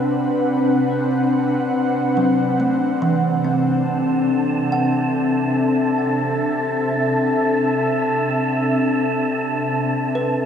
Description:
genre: ambient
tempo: 72 BPM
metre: 4/4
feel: straight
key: unclear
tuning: A4 = 440 Hz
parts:
  - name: ethereal airy pad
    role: sustained chords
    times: 0.0-10.5 s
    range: C3 to F#5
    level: -18 LUFS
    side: left 1 dB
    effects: ensemble chorus, built-in reverb
  - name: kalimba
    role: arpeggios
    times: 0.0-10.5 s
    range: E3 to F#5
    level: -25 LUFS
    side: right 3 dB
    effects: diffuse ambient delay
  - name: wind-like tuned noise texture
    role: texture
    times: 3.9-10.5 s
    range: A5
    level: -25 LUFS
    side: equal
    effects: built-in reverb
room: wet concert hall reverb, RT60 1.9 s, studio reverb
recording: cassette tape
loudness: -17 LUFS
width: side -8 dB against mid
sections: 0.0-10.5 A section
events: fade-in on kalimba 0.0-10.5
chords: 0.0 Bm/C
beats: | 0.07 0.90 1.75 2.60 | 3.45 4.30 5.13 5.97 | 6.81 7.65 8.48 9.32 | 10.15

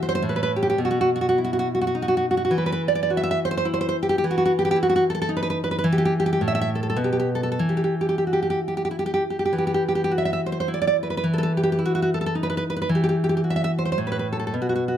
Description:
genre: romantic piece for solo classical guitar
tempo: 91-113 BPM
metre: 3/4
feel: rubato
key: E minor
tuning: A4 = 440 Hz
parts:
  - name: nylon-string guitar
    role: solo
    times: 0.0-15.0 s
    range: A2 to E5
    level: -20 LUFS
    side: equal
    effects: none
room: light reverb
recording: close, detailed microphones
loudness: -20 LUFS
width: side -10 dB against mid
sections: 0.0-9.5 A section; 9.5-15.0 B section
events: none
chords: 0.2 N.C.; 0.8 B; 2.5 Esus2; 4.2 Emaj7(no3); 5.9 N.C.; 7.6 Emadd9; 11.2 Emmaj7; 12.9 Emadd9; 14.0 N.C.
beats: 0.23 | 0.80 1.39 1.97 | 2.54 3.11 3.68 | 4.23 4.78 5.31 | 5.85 6.41 6.98 | 7.61 8.27 8.91 | 9.54 10.12 10.69 | 11.25 11.81 12.35 | 12.89 13.43 13.98 | 14.55

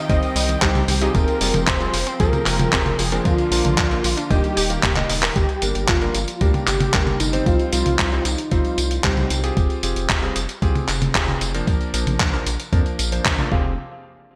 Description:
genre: italo disco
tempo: 114 BPM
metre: 4/4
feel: straight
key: F dorian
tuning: A4 = 440 Hz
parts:
  - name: unison lead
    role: melody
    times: 0.0-9.4 s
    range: Eb4 to Eb5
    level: -27 LUFS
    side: equal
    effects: digital delay
  - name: clear studio string section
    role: sustained chords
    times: 0.0-5.3 s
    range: D3 to G5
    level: -32 LUFS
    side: equal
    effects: none
  - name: unison pluck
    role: arpeggios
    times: 0.0-5.3 s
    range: D3 to Bb4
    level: -31 LUFS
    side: equal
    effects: digital delay
  - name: clear electric grand piano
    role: stabs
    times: 0.1-13.7 s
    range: F3 to F5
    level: -29 LUFS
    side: equal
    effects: subtle chorus, low-pass filter, digital delay
  - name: round analog bass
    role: bass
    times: 0.1-13.8 s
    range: Eb1 to F2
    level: -27 LUFS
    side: equal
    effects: tube saturation
  - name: dusty soul sampler-style drum kit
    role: drums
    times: 0.1-13.5 s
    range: handclaps, hi-hat, tambourine, toms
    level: -25 LUFS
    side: equal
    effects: gated reverb
  - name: electronic kick drum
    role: drums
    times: 0.1-13.6 s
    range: none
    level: -24 LUFS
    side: equal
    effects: none
room: moderate lush hall reverb, RT60 1.6 s, digital ambience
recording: bright 1980s-style digital production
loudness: -20 LUFS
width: mono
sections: 0.0-5.4 A section; 5.4-13.8 B section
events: drum fill 5.0-5.4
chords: 0.0 Cm; 1.1 Fmadd9; 3.3 Bb; 4.3 Eb; 5.4 Gm; 7.5 Cm; 9.6 Fmadd9; 11.7 Bb; 13.5 Fmadd9; 13.8 N.C.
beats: 0.10 0.62 | 1.15 1.67 2.20 2.73 | 3.25 3.78 4.31 4.83 | 5.36 5.88 6.41 6.94 | 7.46 7.99 8.52 9.04 | 9.57 10.10 10.62 11.15 | 11.67 12.20 12.73 13.25

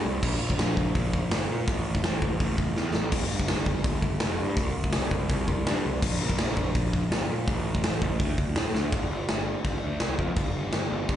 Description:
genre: punk rock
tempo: 165 BPM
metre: 4/4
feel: straight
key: unclear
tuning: A4 = 440 Hz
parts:
  - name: fuzz picked electric bass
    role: bass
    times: 0.0-11.2 s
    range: F1 to Bb2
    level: -28 LUFS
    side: equal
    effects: overdrive
  - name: big rock drum kit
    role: drums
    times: 0.2-11.2 s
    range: crash cymbal, hi-hat, kick drum, snare drum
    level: -27 LUFS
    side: equal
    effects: none
room: little or no reverb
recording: live gig heard through the venue's PA, club reverb, nothing above 10.4 kHz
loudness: -24 LUFS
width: side -10 dB against mid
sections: 0.0-8.9 A section; 8.9-11.2 B section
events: drum fill 2.8-3.1, 8.7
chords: none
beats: | 0.23 0.59 0.95 1.31 | 1.68 2.04 2.40 2.76 | 3.12 3.48 3.85 4.21 | 4.57 4.93 5.30 5.66 | 6.02 6.39 6.75 7.11 | 7.47 7.84 8.20 8.56 | 8.93 9.29 9.65 10.02 | 10.38 10.74 11.11

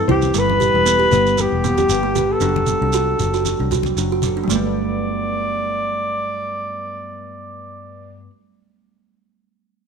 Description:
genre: highlife guitar band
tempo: 115 BPM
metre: 4/4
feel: swing 54% on 16ths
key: G major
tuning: A4 = 440 Hz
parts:
  - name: dark alto saxophone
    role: melody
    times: 0.0-8.2 s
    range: G4 to D5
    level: -20 LUFS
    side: left 2 dB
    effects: none
  - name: nylon-string guitar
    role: accompaniment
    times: 0.0-8.4 s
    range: G2 to D5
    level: -28 LUFS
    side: left 11 dB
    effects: none
  - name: kalimba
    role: arpeggios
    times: 0.1-8.3 s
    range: F#3 to G4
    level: -22 LUFS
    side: right 8 dB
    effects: slapback echo
  - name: fingered electric bass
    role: bass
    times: 0.1-8.2 s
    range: E1 to C2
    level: -24 LUFS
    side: left 1 dB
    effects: none
  - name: congas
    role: percussion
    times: 0.1-4.7 s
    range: none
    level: -27 LUFS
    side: left 11 dB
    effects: none
  - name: shekere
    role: percussion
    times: 0.2-4.7 s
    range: none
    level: -27 LUFS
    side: right 6 dB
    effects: none
room: moderate echo chamber reverb, RT60 1.3 s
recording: 1960s-style stereo with parts hard left and right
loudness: -16 LUFS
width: side -6 dB against mid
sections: 0.3-4.5 A section; 4.5-8.7 B section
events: none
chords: 0.3 Gadd9; 2.4 D/F#; 4.5 Gadd9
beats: | 0.34 0.86 1.38 1.90 | 2.42 2.94 3.45 3.97 | 4.49 5.01 5.53 6.05 | 6.57 7.09 7.61 8.13

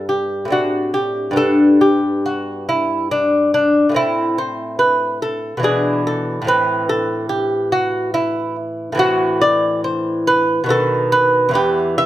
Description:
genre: classical, baroque-style dance for lute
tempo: 71 BPM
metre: 3/4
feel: rubato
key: unclear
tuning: A4 = 442 Hz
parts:
  - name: lute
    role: solo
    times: 0.0-12.1 s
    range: E2 to E5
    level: -15 LUFS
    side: equal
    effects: none
room: light reverb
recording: close, detailed microphones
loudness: -15 LUFS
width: side -13 dB against mid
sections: 0.0-12.1 A section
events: none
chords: 0.0 G; 0.5 D7/A; 1.4 G; 4.0 Am; 5.6 E7/B; 6.5 Am; 10.7 B7; 11.6 E5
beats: 0.53 | 1.39 2.26 3.12 | 3.96 4.80 5.64 | 6.48 7.31 8.15 | 9.00 9.85 10.70 | 11.56

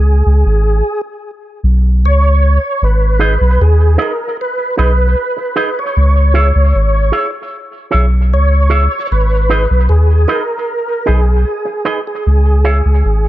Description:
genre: reggae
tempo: 76 BPM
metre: 4/4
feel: straight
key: G# minor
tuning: A4 = 444 Hz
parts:
  - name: tonewheel organ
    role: melody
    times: 0.0-13.3 s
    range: G#4 to C#5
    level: -18 LUFS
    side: right 1 dB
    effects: overdrive, chorus vibrato, slow rotary speaker, tape echo
  - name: soft dub sub bass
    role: bass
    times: 0.0-13.3 s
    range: G#1 to D#2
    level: -10 LUFS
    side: equal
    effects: none
  - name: electric guitar with an envelope filter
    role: accompaniment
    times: 3.2-12.8 s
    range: D#4 to E5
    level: -20 LUFS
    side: right 3 dB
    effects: tape echo
room: digital ambience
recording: none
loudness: -10 LUFS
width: side -15 dB against mid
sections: 0.0-13.3 A section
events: break 0.0-2.8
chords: 0.0 C#5; 2.8 G#m; 6.0 C#m; 9.1 G#m; 12.2 C#m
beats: 0.44 1.23 2.02 | 2.80 3.59 4.38 5.16 | 5.95 6.74 7.53 8.31 | 9.10 9.89 10.67 11.46 | 12.25 13.03

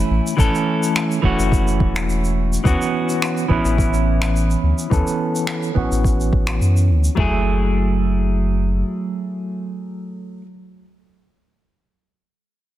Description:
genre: sunset chillout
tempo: 106 BPM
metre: 4/4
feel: straight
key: F# minor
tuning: A4 = 440 Hz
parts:
  - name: clean electric guitar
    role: accompaniment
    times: 0.0-10.5 s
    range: E3 to A4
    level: -20 LUFS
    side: right 1 dB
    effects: auto-pan, vintage 12-bit sampler grit, low-pass filter, tape echo
  - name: warm sub bass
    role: bass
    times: 0.0-8.8 s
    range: E1 to F#2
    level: -19 LUFS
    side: equal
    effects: none
  - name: shaker and finger snaps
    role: drums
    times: 0.3-7.1 s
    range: none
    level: -27 LUFS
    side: equal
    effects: none
  - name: smooth R&B drum kit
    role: drums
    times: 0.4-7.3 s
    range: kick drum, toms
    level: -19 LUFS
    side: equal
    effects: none
room: light reverb, small room ambience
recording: dense, heavily limited modern master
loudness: -16 LUFS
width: side -14 dB against mid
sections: 0.0-7.2 A section; 7.2-9.4 B section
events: filter sweep on clean electric guitar 0.0-7.2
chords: 0.0 A6; 2.6 Dmaj13 (rootless); 7.2 F#m9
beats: | 0.38 0.95 1.52 2.08 | 2.65 3.21 3.78 4.35 | 4.91 5.48 6.04 6.61 | 7.18 7.74 8.31 8.88

